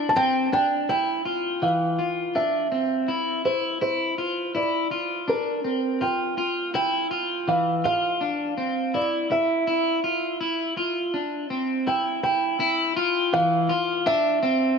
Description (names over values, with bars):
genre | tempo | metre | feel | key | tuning
dream pop | 82 BPM | 4/4 | straight | unclear | A4 = 440 Hz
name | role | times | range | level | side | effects
felt-muted upright piano | melody | 0.0-14.8 s | Bb4 to A5 | -25 LUFS | right 2 dB | ping-pong delay
electric guitar at the edge of break-up | arpeggios | 0.0-14.8 s | E3 to F4 | -24 LUFS | left 2 dB | lush chorus, ping-pong delay
room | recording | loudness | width
moderate plate reverb, RT60 2.8 s | none | -22 LUFS | side -6 dB against mid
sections
0.9-12.6 A section; 12.6-14.8 B section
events
none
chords
0.0 C5; 0.9 F5; 3.8 Bbadd9; 6.7 F5; 9.7 C; 12.6 F5